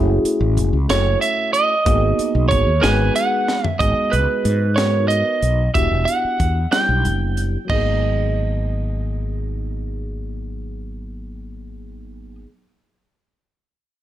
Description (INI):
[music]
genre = electric jazz fusion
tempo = 62 BPM (dotted quarters)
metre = 6/8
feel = straight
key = unclear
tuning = A4 = 439 Hz
[part]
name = bright tine electric piano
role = accompaniment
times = 0.0-12.5 s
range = F#3 to B4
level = -25 LUFS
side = left 1 dB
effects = phaser
[part]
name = mellow fretless electric bass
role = bass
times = 0.0-12.4 s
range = E1 to G#2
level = -20 LUFS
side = equal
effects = none
[part]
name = tight funk drum kit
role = drums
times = 0.3-7.8 s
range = crash cymbal, hi-hat, kick drum, snare drum, toms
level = -24 LUFS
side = equal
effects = none
[part]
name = lightly driven lead guitar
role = melody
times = 0.9-12.4 s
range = B4 to G#5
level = -20 LUFS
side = right 3 dB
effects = none
[sound]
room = light reverb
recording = dark, warm production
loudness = -16 LUFS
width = side -12 dB against mid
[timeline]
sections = 0.0-3.8 A section; 3.8-7.7 B section; 7.7-11.6 C section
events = drum fill 3.5-3.8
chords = 0.0 F#m9; 1.9 G#m9; 5.8 Em9; 7.7 G#m9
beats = 0.90 | 1.87 2.84 | 3.81 4.78 | 5.75 6.72 | 7.70 8.67 | 9.64 10.62